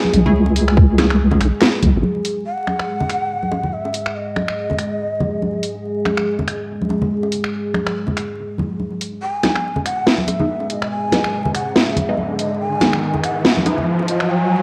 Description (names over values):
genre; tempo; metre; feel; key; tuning
deep dubstep; 142 BPM; 4/4; swing 57% on 16ths, half-time; G# minor; A4 = 438 Hz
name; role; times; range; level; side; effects
deep dark ambient pad; sustained chords; 0.0-14.3 s; G#3 to G#4; -27 LUFS; equal; chorus, built-in reverb, cassette tape
congas and bongos; percussion; 0.0-14.1 s; none; -26 LUFS; equal; dub echo
deep soft wobble bass; bass; 0.1-2.0 s; G#1 to C#2; -16 LUFS; equal; chorus
garage drum kit; drums; 0.1-14.3 s; finger snaps, handclaps, hi-hat, snare drum; -21 LUFS; equal; cassette tape
filtered dub chord stab; stabs; 0.3-1.1, 9.4-13.8 s; G#3 to G#4; -28 LUFS; equal; phaser, cassette tape, dub echo
electronic kick drum; drums; 0.8-0.9 s; none; -13 LUFS; equal; cassette tape
breathy mellow long shakuhachi; melody; 2.5-5.6, 9.2-14.6 s; D#5 to G#5; -26 LUFS; equal; dub echo
riser; sound effects; 10.9-14.6 s; none; -25 LUFS; equal; none
room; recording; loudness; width
moderate digital room reverb, RT60 1.3 s; home recording on cassette, vinyl crackle; -19 LUFS; mono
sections
0.0-2.5 A section; 2.5-9.2 B section; 9.2-14.6 C section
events
drop 0.0-2.5; break 2.0-2.5; build-up 9.2-14.6; riser 10.9-14.6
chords
0.0 C#m; 2.5 N.C.; 9.2 G#m